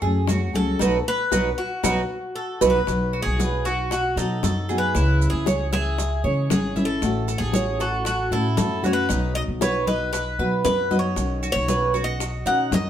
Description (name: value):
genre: latin, Cuban son and guajira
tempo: 116 BPM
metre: 4/4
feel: straight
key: unclear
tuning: A4 = 440 Hz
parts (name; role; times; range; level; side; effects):
- Cuban tres; melody; 0.0-12.9 s; F#4 to F#5; -26 LUFS; left 1 dB; none
- nylon-string guitar; accompaniment; 0.0-12.9 s; B2 to G#4; -28 LUFS; left 2 dB; none
- Cuban tres; arpeggios; 0.0-12.9 s; D#4 to E5; -27 LUFS; right 5 dB; none
- upright bass; bass; 0.0-12.9 s; G#1 to C#3; -26 LUFS; equal; none
- bongos; percussion; 0.0-12.9 s; none; -31 LUFS; left 6 dB; none
- congas; percussion; 0.0-12.9 s; none; -28 LUFS; equal; none
- maracas; percussion; 0.3-12.9 s; none; -34 LUFS; right 7 dB; none
room: moderate studio reverb, RT60 0.8 s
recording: band playing live in one room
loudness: -20 LUFS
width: side -10 dB against mid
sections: 0.0-2.9 A section; 2.9-12.9 B section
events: band accent 0.8-2.9; drum fill 2.1-2.9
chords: 0.0 F#madd9; 0.8 B; 4.9 C#m; 7.0 A6; 9.1 B; 11.2 Badd9